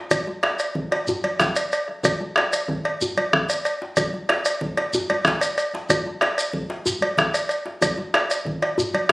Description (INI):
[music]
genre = west african traditional, West African drum ensemble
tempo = 124 BPM (dotted quarters)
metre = 12/8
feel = straight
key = none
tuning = none
[part]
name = bombo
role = percussion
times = 0.1-9.1 s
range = none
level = -22 LUFS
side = equal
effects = none
[part]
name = congas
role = percussion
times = 0.1-9.1 s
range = none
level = -31 LUFS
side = right 1 dB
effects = none
[part]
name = cowbell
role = percussion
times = 0.1-9.1 s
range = none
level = -22 LUFS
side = equal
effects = none
[part]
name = djembe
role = percussion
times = 0.1-9.1 s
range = none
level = -27 LUFS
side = left 1 dB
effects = none
[part]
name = shekere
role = percussion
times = 0.1-8.9 s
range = none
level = -28 LUFS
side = equal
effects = none
[sound]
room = light reverb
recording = recorded on a phone in the room, studio reverb, compression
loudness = -20 LUFS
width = side -22 dB against mid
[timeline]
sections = 0.0-9.1 A section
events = none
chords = none